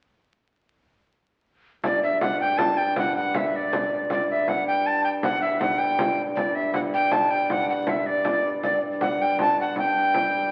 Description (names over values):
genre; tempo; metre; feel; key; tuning
medieval dance; 106 BPM (dotted quarters); 6/8; straight; unclear; A4 = 440 Hz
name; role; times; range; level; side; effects
pedal harmonium; drone; 1.8-10.5 s; G2; -32 LUFS; equal; none
frame drum; percussion; 1.8-10.4 s; none; -31 LUFS; equal; none
tenor recorder; melody; 1.9-10.5 s; D5 to A5; -25 LUFS; equal; none
room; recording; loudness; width
wet large studio reverb, RT60 1.5 s; very old 78 rpm record, vinyl crackle; -24 LUFS; mono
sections
1.8-10.5 A section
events
none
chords
none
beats
| 1.84 2.41 | 2.97 3.54 | 4.10 4.67 | 5.24 5.80 | 6.37 6.93 | 7.50 8.07 | 8.63 9.20 | 9.76 10.33